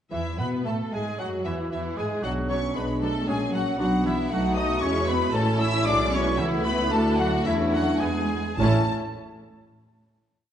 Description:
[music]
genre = quick classical-period movement for symphony orchestra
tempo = 103-117 BPM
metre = 2/4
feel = rubato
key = A major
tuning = A4 = 444 Hz
[part]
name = rich studio violin section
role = melody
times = 0.1-8.9 s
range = E5 to E6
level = -32 LUFS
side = left 3 dB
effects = none
[part]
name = dark clarinet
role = second line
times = 0.1-8.8 s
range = B3 to B4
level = -33 LUFS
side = left 1 dB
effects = none
[part]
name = mellow large flute ensemble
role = second line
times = 0.1-8.9 s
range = E5 to E6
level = -35 LUFS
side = left 2 dB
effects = none
[part]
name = rich studio violin section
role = second line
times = 0.1-8.9 s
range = E4 to A5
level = -35 LUFS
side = left 3 dB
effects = none
[part]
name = warm oboe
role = second line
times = 0.1-8.8 s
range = E4 to E5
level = -34 LUFS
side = right 1 dB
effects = none
[part]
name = clear bassoon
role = accompaniment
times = 0.1-8.8 s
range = E3 to C#4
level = -33 LUFS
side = right 1 dB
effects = none
[part]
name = warm studio viola section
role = accompaniment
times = 0.1-8.9 s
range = E3 to E4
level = -33 LUFS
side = right 1 dB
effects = none
[part]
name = dark French horn section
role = sustained chords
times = 0.1-8.8 s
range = E3 to F#4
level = -30 LUFS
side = left 2 dB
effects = none
[part]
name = rich studio double bass section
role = bass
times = 0.1-8.9 s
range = A1 to B2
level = -30 LUFS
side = right 2 dB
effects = none
[part]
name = warm studio cello section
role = bass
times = 0.1-8.9 s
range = E3 to E4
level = -30 LUFS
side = right 2 dB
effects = none
[sound]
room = wet recital hall reverb, RT60 1.6 s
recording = nothing above 10.3 kHz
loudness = -22 LUFS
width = side -9 dB against mid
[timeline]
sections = 0.1-8.6 variation; 8.6-9.7 final chord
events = none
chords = 0.1 A5/E; 1.2 Esus2; 1.7 E; 2.2 Bm; 3.3 F#/A#; 3.8 Bm; 4.3 B7; 4.8 E; 5.3 A; 5.9 E7/B; 6.4 A/C#; 6.9 D; 7.5 E7sus4; 8.0 E7; 8.6 A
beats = | 0.12 0.66 | 1.19 1.72 | 2.24 2.75 | 3.27 3.79 | 4.31 4.82 | 5.34 5.86 | 6.39 6.92 | 7.47 8.02 | 8.60

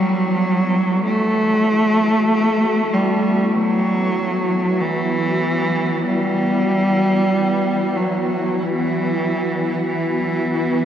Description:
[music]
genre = dark ambient drone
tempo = 48 BPM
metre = 4/4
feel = straight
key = E minor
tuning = A4 = 440 Hz
[part]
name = warm cello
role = melody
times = 0.0-10.8 s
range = E3 to A3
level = -17 LUFS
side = equal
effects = shimmer reverb, diffuse ambient delay
[part]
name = granular cloud pad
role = sustained chords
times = 0.0-10.8 s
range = E3 to F#4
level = -23 LUFS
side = equal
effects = built-in reverb, shimmer reverb
[sound]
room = wet huge ambient reverb, RT60 9.3 s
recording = worn, warbling old tape, cassette tape, warbly pitch drift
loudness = -16 LUFS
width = side -9 dB against mid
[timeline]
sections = 0.0-10.8 A section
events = fade-in on ambient pad 0.0-10.8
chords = 0.0 Emadd9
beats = | 1.05 2.30 3.56 4.82 | 6.07 7.34 8.61 9.89

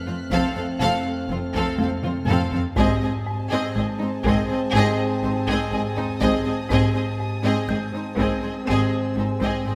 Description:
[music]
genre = cinematic, suspense film score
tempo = 61 BPM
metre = 4/4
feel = straight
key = unclear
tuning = A4 = 442 Hz
[part]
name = mellow French horn section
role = sustained chords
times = 0.0-9.8 s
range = Ab3 to C4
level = -31 LUFS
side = equal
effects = none
[part]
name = folk marimba with medium hard mallets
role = riff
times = 0.0-9.8 s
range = F2 to Ab3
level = -31 LUFS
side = equal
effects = none
[part]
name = music box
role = texture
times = 0.0-1.8, 7.7-9.8 s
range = B4 to G6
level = -42 LUFS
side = equal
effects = none
[part]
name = warm symphonic violin section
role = texture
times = 0.0-9.8 s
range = Ab5 to C7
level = -40 LUFS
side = equal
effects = none
[part]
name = warm symphonic violin section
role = melody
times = 0.1-9.8 s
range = C5 to F5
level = -33 LUFS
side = equal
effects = none
[part]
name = warm chamber violin section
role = second line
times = 0.1-9.7 s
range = Eb4 to A4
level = -32 LUFS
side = equal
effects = none
[part]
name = dark symphonic viola section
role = accompaniment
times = 0.1-9.7 s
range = C4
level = -30 LUFS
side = equal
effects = none
[part]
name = warm chamber cello section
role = bass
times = 0.1-9.7 s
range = F2 to Ab2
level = -31 LUFS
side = equal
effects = none
[part]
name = rich studio double bass section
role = bass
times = 0.3-9.7 s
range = F1 to Ab1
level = -30 LUFS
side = equal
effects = none
[part]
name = solo taiko drums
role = drums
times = 0.3-9.8 s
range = none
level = -32 LUFS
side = equal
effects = none
[sound]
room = moderate scoring stage reverb, RT60 2.0 s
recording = none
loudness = -23 LUFS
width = mono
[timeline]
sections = 0.0-9.8 A section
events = drum fill 1.8-2.8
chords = 0.0 F; 2.8 Ab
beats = 0.80 1.79 | 2.77 3.75 4.74 5.72 | 6.71 7.69 8.67 9.65

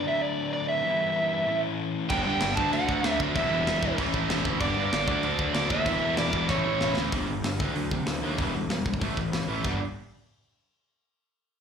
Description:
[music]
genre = punk rock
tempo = 191 BPM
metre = 4/4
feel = straight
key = G major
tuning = A4 = 439 Hz
[part]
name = overdriven electric guitar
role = melody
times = 0.0-6.9 s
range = C#5 to A5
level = -28 LUFS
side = right 2 dB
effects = slapback echo
[part]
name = sludgy distorted guitar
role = riff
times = 0.0-9.8 s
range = G2 to E4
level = -31 LUFS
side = left 7 dB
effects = overdrive, slapback echo
[part]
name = distorted electric guitar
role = riff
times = 2.1-7.1 s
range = G2 to E4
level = -32 LUFS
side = right 2 dB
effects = distortion, slapback echo
[part]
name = tight distorted guitar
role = riff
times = 2.1-9.8 s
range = E2 to D4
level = -33 LUFS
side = right 12 dB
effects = distortion, slapback echo
[part]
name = fuzz picked electric bass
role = bass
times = 2.1-9.8 s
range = E1 to C3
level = -31 LUFS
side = right 1 dB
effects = overdrive
[part]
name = tight metal drum kit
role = drums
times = 2.1-9.7 s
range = crash cymbal, hi-hat, kick drum, snare drum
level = -32 LUFS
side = equal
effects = none
[sound]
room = small room ambience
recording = live gig heard through the venue's PA, club reverb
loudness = -24 LUFS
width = side -7 dB against mid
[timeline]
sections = 0.0-7.1 A section; 7.1-9.6 B section; 9.6-10.9 C section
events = drum fill 6.5-7.1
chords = 0.1 D; 0.8 Em; 1.5 A; 2.1 G; 2.6 D; 3.4 Em; 4.0 A; 4.6 G; 5.1 D; 5.9 Em; 6.5 A; 7.1 G5; 7.6 D; 8.4 Em; 9.0 A5; 9.6 G5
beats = 0.21 0.53 | 0.84 1.16 1.47 1.78 | 2.10 2.41 2.73 3.04 | 3.35 3.67 3.98 4.30 | 4.61 4.92 5.24 5.55 | 5.86 6.18 6.49 6.80 | 7.12 7.43 7.75 8.06 | 8.38 8.70 9.01 9.33 | 9.65

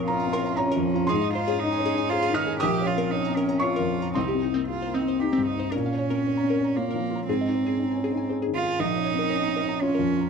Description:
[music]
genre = neoclassical piano and strings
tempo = 117 BPM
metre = 3/4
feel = rubato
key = Bb dorian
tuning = A4 = 442 Hz
[part]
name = felt-muted upright piano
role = accompaniment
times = 0.0-10.3 s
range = Bb1 to F6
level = -26 LUFS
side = left 2 dB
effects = none
[part]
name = glassy wavetable pluck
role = arpeggios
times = 0.0-10.3 s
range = C4 to Bb5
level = -30 LUFS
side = left 3 dB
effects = chorus, tape echo
[part]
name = warm cello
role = second line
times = 0.1-10.3 s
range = Bb3 to G4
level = -26 LUFS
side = right 4 dB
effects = none
[sound]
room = wet small room reverb, RT60 0.5 s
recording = none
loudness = -22 LUFS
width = side -6 dB against mid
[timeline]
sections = 0.0-5.7 A section; 5.7-10.3 A section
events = none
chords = 0.0 Bbm; 1.1 Ab; 2.6 Bbm; 4.2 Cm; 5.7 Bbm; 7.3 Ab; 8.8 Bbm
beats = 0.08 0.59 | 1.10 1.61 2.11 | 2.61 3.12 3.63 | 4.15 4.68 5.20 | 5.72 6.24 6.75 | 7.27 7.78 8.29 | 8.79 9.30 9.81

